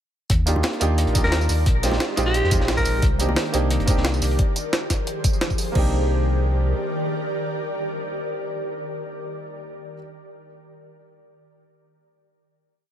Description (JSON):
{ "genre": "liquid drum and bass", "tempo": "176 BPM", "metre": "4/4", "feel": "swing 54% on 16ths", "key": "C minor", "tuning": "A4 = 440 Hz", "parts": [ { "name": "ethereal airy pad", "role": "sustained chords", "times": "0.8-9.2 s", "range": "Eb3 to D5", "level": "-29 LUFS", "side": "equal", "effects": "ensemble chorus, built-in reverb" }, { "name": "sub bass with octave", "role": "bass", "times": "0.3-6.7 s", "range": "G1 to F2", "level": "-22 LUFS", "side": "equal", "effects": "none" }, { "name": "crunchy breakbeat drum kit", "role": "drums", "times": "0.3-4.4 s", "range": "hi-hat, snare drum", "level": "-32 LUFS", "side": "equal", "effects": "high-pass filter on hats, high-pass filter on snare, high-pass filter on room" }, { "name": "drum and bass drum kit", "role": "drums", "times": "0.3-5.8 s", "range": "crash cymbal, kick drum", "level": "-22 LUFS", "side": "equal", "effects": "overdrive" }, { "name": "jungle sampler-style drum kit", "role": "drums", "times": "0.3-5.7 s", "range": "hi-hat, snare drum, tambourine", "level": "-26 LUFS", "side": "equal", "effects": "none" }, { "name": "clear concert grand piano", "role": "accompaniment", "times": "0.5-10.0 s", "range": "Ab3 to G4", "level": "-27 LUFS", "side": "right 2 dB", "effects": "tape echo" }, { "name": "bongos", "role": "percussion", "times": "0.6-3.4 s", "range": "none", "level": "-32 LUFS", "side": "equal", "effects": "none" }, { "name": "growling alto saxophone", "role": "melody", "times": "1.2-3.1 s", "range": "G4 to Bb4", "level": "-27 LUFS", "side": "equal", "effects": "tape echo" } ], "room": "small room ambience", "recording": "none", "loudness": "-19 LUFS", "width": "side -10 dB against mid", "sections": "0.3-5.8 drop; 5.8-8.5 final chord", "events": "drop 0.3-5.8", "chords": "0.3 Ebmaj7; 1.7 Bb13sus4; 3.0 Cm9; 4.4 Fm9; 5.8 Cm9" }